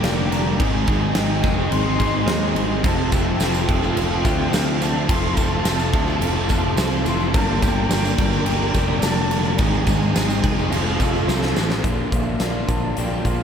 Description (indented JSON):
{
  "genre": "rock, shoegaze and dream pop",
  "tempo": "107 BPM",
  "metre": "4/4",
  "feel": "straight",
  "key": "unclear",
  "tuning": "A4 = 441 Hz",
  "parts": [
    { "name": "mellow jazz flute", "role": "melody", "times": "0.0-13.4 s", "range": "E5 to C6", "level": "-29 LUFS", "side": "left 1 dB", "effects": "ping-pong delay" },
    { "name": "string machine, full ensemble", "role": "sustained chords", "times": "0.0-11.8 s", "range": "Ab4 to E6", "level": "-32 LUFS", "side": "equal", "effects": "none" },
    { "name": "electric guitar through a small old amp", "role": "arpeggios", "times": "0.0-13.4 s", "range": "Eb3 to Eb4", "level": "-31 LUFS", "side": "equal", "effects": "none" },
    { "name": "biting overdriven guitar", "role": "riff", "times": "0.0-13.4 s", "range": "G2 to Bb4", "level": "-28 LUFS", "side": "right 7 dB", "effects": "reverse reverb" },
    { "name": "overdriven semi-hollow guitar", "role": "riff", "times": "0.0-13.4 s", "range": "G2 to Bb4", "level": "-26 LUFS", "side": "left 6 dB", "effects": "wide subtle chorus" },
    { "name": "raw garage guitar", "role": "riff", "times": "0.0-11.8 s", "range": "F2 to Ab3", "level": "-28 LUFS", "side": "right 2 dB", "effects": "overdrive, phaser" },
    { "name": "modern bright picked electric bass", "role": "bass", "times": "0.0-13.4 s", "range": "F1 to Eb2", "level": "-24 LUFS", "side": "equal", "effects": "none" },
    { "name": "huge arena drum kit", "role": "drums", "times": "0.0-13.4 s", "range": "crash cymbal, hi-hat, kick drum, snare drum", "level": "-22 LUFS", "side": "equal", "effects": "none" },
    { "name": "tambourine", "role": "percussion", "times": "2.8-11.8 s", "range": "none", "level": "-38 LUFS", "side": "right 6 dB", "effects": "none" }
  ],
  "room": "moderate cathedral reverb, RT60 4.9 s",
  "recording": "dreamy mix soaked in reverb",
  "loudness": "-17 LUFS",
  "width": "side -8 dB against mid",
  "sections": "0.0-11.8 A section; 11.8-13.4 B section",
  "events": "drum fill 11.3-11.8",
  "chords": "0.0 Gm; 0.6 Abmaj7; 2.8 Fmaj7; 7.3 Gm; 9.6 Abmaj7; 10.7 Fmaj7; 11.8 Bb",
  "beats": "0.03 | 0.60 1.16 1.72 2.29 | 2.85 3.41 3.97 4.53 | 5.10 5.66 6.22 6.78 | 7.34 7.91 8.47 9.03 | 9.59 10.15 10.71 11.28 | 11.84 12.40 12.96"
}